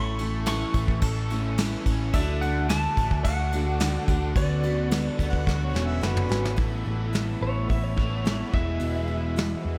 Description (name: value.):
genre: folk rock and heartland rock.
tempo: 108 BPM.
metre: 4/4.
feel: straight.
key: A major.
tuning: A4 = 440 Hz.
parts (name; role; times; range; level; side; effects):
lightly driven lead guitar; melody; 0.0-9.6 s; C#5 to C#6; -35 LUFS; equal; lush chorus.
bright grand piano; accompaniment; 0.0-6.5 s; D4 to C#6; -45 LUFS; equal; none.
picked steel-string acoustic guitar; accompaniment; 0.0-9.8 s; E2 to F#4; -35 LUFS; equal; none.
tonewheel organ; sustained chords; 0.0-9.8 s; G#4 to D6; -43 LUFS; equal; slow rotary speaker.
crunchy overdriven guitar; riff; 0.0-9.8 s; E2 to A4; -37 LUFS; equal; analog chorus.
hollow-body short-scale picked electric bass; bass; 0.0-9.8 s; E1 to E2; -30 LUFS; equal; none.
soft brush drum kit; drums; 0.2-9.5 s; crash cymbal, hi-hat, kick drum, snare drum, toms; -30 LUFS; equal; none.
warm harmonica; second line; 5.3-6.4 s; B4 to F#5; -39 LUFS; equal; analog delay.
room: moderate plate reverb, RT60 2.5 s.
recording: dreamy mix soaked in reverb.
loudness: -26 LUFS.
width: mono.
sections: 0.0-6.6 A section; 6.6-9.8 B section.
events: drum fill 5.5-6.6; lead electric guitar solo 6.6-9.8.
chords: 0.0 A; 2.1 D; 4.4 Bmadd9/D; 6.6 Asus2; 8.5 E.